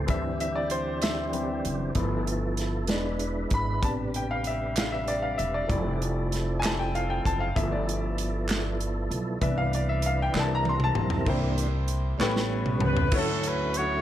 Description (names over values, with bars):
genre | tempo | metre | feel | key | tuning
slow gospel | 64 BPM (dotted quarters) | 6/8 | straight | C major | A4 = 440 Hz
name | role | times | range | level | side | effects
bright grand piano | accompaniment | 0.0-14.0 s | A2 to C6 | -30 LUFS | left 3 dB | none
percussive tonewheel organ | sustained chords | 0.0-14.0 s | C3 to C5 | -33 LUFS | right 3 dB | slow rotary speaker, overdrive, chorus vibrato
upright bass | bass | 0.0-14.0 s | E1 to D2 | -30 LUFS | equal | none
modern studio drum kit | drums | 0.1-13.9 s | crash cymbal, hi-hat, kick drum, snare drum, toms | -30 LUFS | equal | none
group handclap | percussion | 4.8-12.5 s | none | -35 LUFS | right 2 dB | none
warm horn section | melody | 12.9-14.0 s | C#4 to C#5 | -27 LUFS | left 1 dB | none
room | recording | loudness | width
light reverb | none | -25 LUFS | side -12 dB against mid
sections
0.0-11.3 A section; 11.3-13.1 B section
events
grand piano solo 0.0-11.3; drum fill 10.3-11.3, 12.2-13.1; tonewheel organ solo 11.3-13.1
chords
0.1 D9sus4; 2.0 G13; 2.9 E7; 3.8 Am11; 5.7 Fmaj7; 7.6 G13; 9.4 Cmaj9; 10.3 C7; 12.2 A9; 13.1 Dmaj9